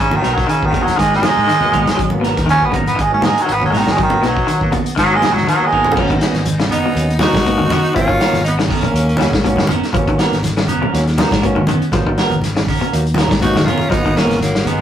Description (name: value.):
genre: afrobeat.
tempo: 121 BPM.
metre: 4/4.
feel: swing 53% on 16ths.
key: G# dorian.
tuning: A4 = 440 Hz.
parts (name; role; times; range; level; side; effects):
raspy baritone saxophone; melody; 0.0-6.0 s; C#3 to C#4; -15 LUFS; right 2 dB; none.
fingered electric bass; bass; 0.0-14.8 s; F#1 to G#2; -21 LUFS; left 1 dB; none.
barky tine electric piano; accompaniment; 0.1-14.3 s; F#3 to D#4; -24 LUFS; right 1 dB; none.
congas; percussion; 0.1-14.8 s; none; -22 LUFS; right 1 dB; none.
electric guitar through a small old amp; arpeggios; 0.2-14.2 s; B2 to G#3; -21 LUFS; left 2 dB; none.
semi-hollow electric guitar; stabs; 0.2-14.8 s; B3 to A#4; -23 LUFS; right 4 dB; phaser.
vintage drum kit; drums; 0.2-14.8 s; crash cymbal, hi-hat, kick drum, snare drum, toms; -20 LUFS; left 1 dB; none.
raspy tenor saxophone; melody; 6.7-9.7, 13.4-14.8 s; A#3 to F#4; -20 LUFS; left 1 dB; none.
breathy alto saxophone; second line; 6.7-9.7, 13.4-14.8 s; F#3 to D#4; -22 LUFS; equal; none.
room: wet studio reverb, RT60 0.6 s.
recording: rough rehearsal-room recording, warm saturation.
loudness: -13 LUFS.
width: side -10 dB against mid.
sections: 0.0-6.0 A section; 6.0-14.8 B section.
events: baritone saxophone solo 0.0-6.0; drum fill 5.3-6.0, 13.4-13.9.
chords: 0.0 G#m9; 6.0 G#m11.